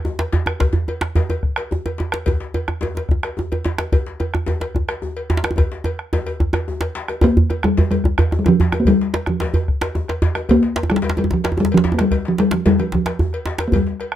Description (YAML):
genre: west african traditional, West African drum ensemble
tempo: 146 BPM (dotted quarters)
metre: 12/8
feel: straight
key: unclear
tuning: A4 = 440 Hz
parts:
  - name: djembe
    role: percussion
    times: 0.0-13.9 s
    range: none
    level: -20 LUFS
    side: right 1 dB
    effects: none
  - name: djembe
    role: percussion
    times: 0.1-14.1 s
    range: none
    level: -28 LUFS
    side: left 3 dB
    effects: none
  - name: bombo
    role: percussion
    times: 0.2-14.2 s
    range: none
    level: -21 LUFS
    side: left 1 dB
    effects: none
  - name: cowbell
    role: percussion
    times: 0.2-14.1 s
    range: none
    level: -29 LUFS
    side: left 2 dB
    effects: none
  - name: talking drum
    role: melody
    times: 7.2-14.2 s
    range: F3 to Bb3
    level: -17 LUFS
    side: equal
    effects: none
room: light reverb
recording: close, detailed microphones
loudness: -17 LUFS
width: side -11 dB against mid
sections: 0.0-7.2 A section; 7.2-14.2 B section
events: speeding up 0.0-14.2; drum fill 5.6-7.2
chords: none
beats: 0.19 | 0.61 1.02 1.44 1.85 | 2.27 2.69 3.10 3.51 | 3.93 4.34 4.75 5.17 | 5.58 5.99 6.40 6.81 | 7.22 7.63 8.04 8.45 | 8.86 9.27 9.68 10.09 | 10.49 10.90 11.31 11.71 | 12.12 12.53 12.93 13.34 | 13.74 14.14